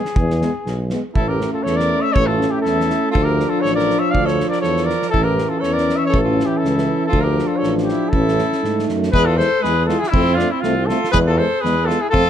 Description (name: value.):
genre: balkan folk, Balkan brass band.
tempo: 120 BPM.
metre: 2/4.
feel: swing 55% on 16ths.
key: A phrygian dominant.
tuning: A4 = 440 Hz.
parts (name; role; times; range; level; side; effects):
mellow trumpet; melody; 0.0-12.3 s; E4 to F5; -20 LUFS; left 3 dB; none.
loose indie drum kit; percussion; 0.1-12.3 s; kick drum, snare drum; -24 LUFS; equal; none.
warm tuba; bass; 0.2-12.3 s; A1 to G#2; -21 LUFS; equal; none.
dark euphonium; accompaniment; 0.4-12.2 s; B3 to E4; -23 LUFS; left 5 dB; none.
warm trombone; accompaniment; 0.4-12.2 s; E3 to A3; -24 LUFS; right 9 dB; none.
bright alto saxophone; second line; 1.1-12.3 s; C4 to D5; -25 LUFS; right 7 dB; none.
room: little or no reverb.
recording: none.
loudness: -15 LUFS.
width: side -9 dB against mid.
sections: 0.0-1.2 A section; 1.2-9.1 B section; 9.1-12.3 C section.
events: trumpet solo 0.0-1.2.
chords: 0.0 E; 1.2 A; 3.1 Dm; 5.1 A; 7.1 Dm; 8.1 A; 8.6 F#m13; 9.1 E; 10.1 F; 11.1 E.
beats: | 0.18 0.67 | 1.17 1.66 | 2.16 2.65 | 3.15 3.65 | 4.14 4.64 | 5.14 5.63 | 6.13 6.63 | 7.13 7.63 | 8.13 8.63 | 9.13 9.63 | 10.13 10.63 | 11.13 11.63 | 12.14.